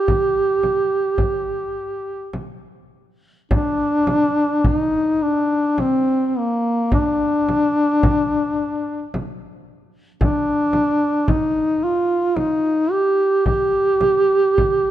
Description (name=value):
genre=caucasian folk, Caucasian lament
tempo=54 BPM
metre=3/4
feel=rubato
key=G minor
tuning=A4 = 440 Hz
part: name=mellow duduk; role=melody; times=0.0-14.9 s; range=Bb3 to G4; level=-17 LUFS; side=equal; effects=none
part: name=frame drum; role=percussion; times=0.1-14.8 s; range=none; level=-23 LUFS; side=equal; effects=none
room=moderate scoring stage reverb, RT60 2.0 s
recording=none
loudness=-16 LUFS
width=side -12 dB against mid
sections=0.0-3.5 A section; 3.5-14.9 B section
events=none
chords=none